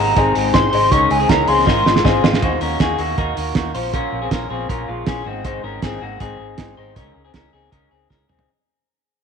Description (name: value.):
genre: jangly indie pop.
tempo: 159 BPM.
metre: 4/4.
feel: straight.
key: Db major.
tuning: A4 = 440 Hz.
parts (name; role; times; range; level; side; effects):
warbly nostalgic lead; melody; 0.0-2.2 s; Ab5 to Db6; -17 LUFS; right 1 dB; chorus.
dark upright piano; accompaniment; 0.0-2.4 s; Eb4 to Gb5; -24 LUFS; left 13 dB; none.
electric guitar through a small old amp; accompaniment; 0.0-8.5 s; Ab2 to Ab4; -26 LUFS; right 12 dB; none.
hollow soft pad; sustained chords; 0.1-2.4 s; C3 to F4; -29 LUFS; left 4 dB; none.
electric guitar through a small old amp; arpeggios; 0.0-8.5 s; Ab3 to C5; -23 LUFS; left 11 dB; none.
vintage muted fingered electric bass; bass; 0.0-8.4 s; Ab1 to Eb2; -26 LUFS; equal; none.
cloth-damped thuddy drum kit; drums; 0.2-8.5 s; hi-hat, kick drum, snare drum, toms; -20 LUFS; right 3 dB; none.
room: moderate echo chamber reverb, RT60 1.8 s, studio ambience.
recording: 1960s-style stereo with parts hard left and right.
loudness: -15 LUFS.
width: side -6 dB against mid.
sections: 0.0-2.4 A section; 2.4-8.5 B section.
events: drum fill 1.7-2.4, 8.1-8.5; fade-out 2.4-8.5.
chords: 0.0 Ab; 0.9 Dbsus2; 1.7 Ab6; 2.4 Ebm; 3.7 Bbm; 5.3 Ab; 7.0 Dbsus2.